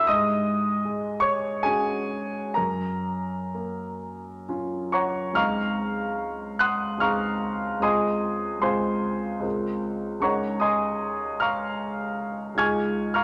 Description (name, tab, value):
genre	classical, impressionist solo piano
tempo	62-79 BPM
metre	3/4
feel	rubato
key	Db major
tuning	A4 = 440 Hz
part	clear grand piano	solo	0.0-13.2 s	Db2 to Ab6	-26 LUFS	equal	none
room	wet recital hall reverb, RT60 1.4 s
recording	none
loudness	-26 LUFS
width	mono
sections	0.0-5.4 A section; 5.4-13.2 B section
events	none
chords	0.1 Ab7sus4; 2.6 Gbmaj7; 5.4 Dbmaj9; 7.8 Fm7/Db; 9.4 Ab69/Db; 10.2 Db69; 12.6 Fm7/Db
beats	| 0.08 0.84 1.65 | 2.57 3.54 4.49 | 5.37 6.20 7.03 | 7.85 8.65 9.45 | 10.24 11.04 11.83 | 12.61